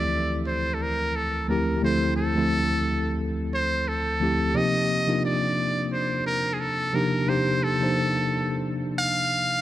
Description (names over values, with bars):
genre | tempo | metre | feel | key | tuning
R&B | 88 BPM | 4/4 | swing 55% on 16ths | D phrygian | A4 = 441 Hz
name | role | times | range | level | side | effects
trumpet with metal mute | melody | 0.0-9.6 s | G#4 to F5 | -26 LUFS | right 1 dB | dub echo
mellow tine electric piano | accompaniment | 0.0-9.6 s | D2 to C5 | -25 LUFS | equal | medium stereo tremolo, dub echo
room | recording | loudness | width
light reverb, small room ambience | echo-heavy mix | -22 LUFS | side -13 dB against mid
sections
0.0-9.6 A section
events
none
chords
0.0 Dm11; 4.5 Cm11